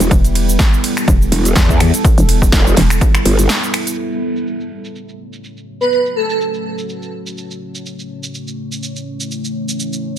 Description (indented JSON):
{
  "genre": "bass house",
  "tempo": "124 BPM",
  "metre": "4/4",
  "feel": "swing 55% on 16ths",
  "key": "F# phrygian",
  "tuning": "A4 = 440 Hz",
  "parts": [
    { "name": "deep dark ambient pad", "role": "sustained chords", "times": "0.0-10.2 s", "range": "G3 to C#5", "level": "-22 LUFS", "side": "right 1 dB", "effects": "chorus, built-in reverb, sidechain pumping" },
    { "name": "growl bass", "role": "bass", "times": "0.0-3.5 s", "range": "E1 to E2", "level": "-13 LUFS", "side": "equal", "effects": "chorus, overdrive, sidechain pumping" },
    { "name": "big-room dance drum kit", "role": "drums", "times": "0.0-10.0 s", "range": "finger snaps, hi-hat, ride cymbal, shaker, snare drum", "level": "-20 LUFS", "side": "right 1 dB", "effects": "low-pass filter on hats, low-pass filter on perc, low-pass filter on snare, low-pass filter on cymbals, low-pass filter on room" },
    { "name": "hollow knocking FM bass", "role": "bass", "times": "0.1-3.0 s", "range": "E1", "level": "-14 LUFS", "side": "equal", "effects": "sidechain pumping" },
    { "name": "electronic kick drum", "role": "drums", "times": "0.1-3.1 s", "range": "none", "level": "-12 LUFS", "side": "equal", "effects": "none" },
    { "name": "airy dreamy lead", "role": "melody", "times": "5.8-6.4 s", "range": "A4 to B4", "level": "-17 LUFS", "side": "right 2 dB", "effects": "chorus, digital delay" }
  ],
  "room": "little or no reverb",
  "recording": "dense, heavily limited modern master",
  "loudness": "-12 LUFS",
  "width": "side -10 dB against mid",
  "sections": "0.0-4.0 A section; 4.0-10.2 B section",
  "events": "drop 0.0-4.0; break 3.5-4.0; filter sweep on ambient pad 4.0-10.2",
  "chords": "0.0 Em; 4.0 F#m"
}